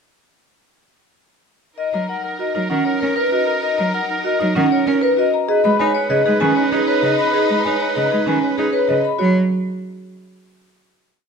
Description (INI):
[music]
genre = classical, minimalist pattern music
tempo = 194 BPM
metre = 6/4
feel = straight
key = B major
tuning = A4 = 441 Hz
[part]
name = vibraphone with hard mallets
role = melody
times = 1.8-9.3 s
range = G#4 to B5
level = -20 LUFS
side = left 9 dB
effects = none
[part]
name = clear oboe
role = second line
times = 1.8-9.0 s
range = A#4 to B4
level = -25 LUFS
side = right 4 dB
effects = none
[part]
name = rich studio violin section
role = sustained chords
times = 1.8-9.0 s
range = D#4 to B4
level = -26 LUFS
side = left 2 dB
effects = none
[part]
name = clear cello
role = accompaniment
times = 1.9-9.3 s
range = C#3 to D#4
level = -22 LUFS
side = right 2 dB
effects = none
[part]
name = marimba with medium mallets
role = arpeggios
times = 2.4-9.3 s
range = C#4 to C#5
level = -20 LUFS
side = right 8 dB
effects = none
[sound]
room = moderate recital hall reverb, RT60 1.3 s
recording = close, detailed microphones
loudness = -15 LUFS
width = side -6 dB against mid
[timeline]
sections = 1.8-9.2 A section; 9.2-11.1 final chord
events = none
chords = 1.8 Bmaj7 (rootless); 5.5 G#m; 9.2 F#5